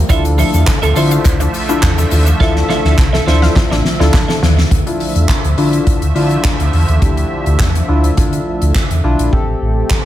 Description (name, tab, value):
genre	dance-pop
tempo	104 BPM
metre	4/4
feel	straight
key	D minor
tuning	A4 = 438 Hz
part	sweeping resonant pad	sustained chords	0.0-10.1 s	D3 to E5	-22 LUFS	right 1 dB	chorus, sidechain pumping
part	sub bass with octave	bass	0.0-9.8 s	A1 to D3	-13 LUFS	equal	sidechain pumping
part	soft electric-piano-like synth keys	accompaniment	0.1-10.0 s	C4 to C5	-19 LUFS	left 3 dB	chorus, sidechain pumping
part	wide unison pluck	arpeggios	0.1-4.5 s	F3 to F5	-25 LUFS	left 1 dB	none
part	twelve-string electric guitar	riff	0.1-4.6 s	F4 to E5	-22 LUFS	right 7 dB	lush chorus
part	soft-mallet drum kit	drums	0.1-10.0 s	handclaps, hi-hat, kick drum, shaker, snare drum	-16 LUFS	equal	none
part	group handclap	percussion	0.7-4.3 s	none	-25 LUFS	right 3 dB	none
room	small room ambience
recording	none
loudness	-11 LUFS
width	side -13 dB against mid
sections	0.0-4.7 A section; 4.7-9.3 B section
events	drum fill 2.4-4.7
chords	0.1 Dmadd9; 9.3 Am7